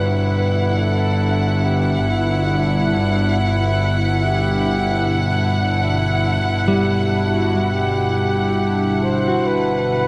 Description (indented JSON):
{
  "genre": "ambient",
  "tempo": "69 BPM",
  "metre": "4/4",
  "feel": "straight",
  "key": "G major",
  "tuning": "A4 = 440 Hz",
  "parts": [
    { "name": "mellow flugelhorn", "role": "melody", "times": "0.0-10.1 s", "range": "D4 to C5", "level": "-28 LUFS", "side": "equal", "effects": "diffuse ambient delay" },
    { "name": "warbly tape-like pad", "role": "sustained chords", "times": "0.4-10.1 s", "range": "B2 to E4", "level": "-28 LUFS", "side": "equal", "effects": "chorus, built-in reverb" },
    { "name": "mellow electric guitar", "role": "arpeggios", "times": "0.0-10.1 s", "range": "G3 to B4", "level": "-25 LUFS", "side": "equal", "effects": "diffuse ambient delay" },
    { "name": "warm studio double bass section", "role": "bass", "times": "0.0-10.1 s", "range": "G1", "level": "-22 LUFS", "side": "equal", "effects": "none" },
    { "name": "muted chamber violin section", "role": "texture", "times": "0.0-10.1 s", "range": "E4 to F#5", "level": "-25 LUFS", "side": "equal", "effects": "none" }
  ],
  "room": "wet huge ambient reverb, RT60 7.6 s",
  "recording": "none",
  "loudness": "-19 LUFS",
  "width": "mono",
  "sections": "0.0-10.1 A section",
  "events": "fade-in on ambient pad 0.0-10.1; fade-in on flugelhorn 0.0-10.1",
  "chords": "0.0 G6"
}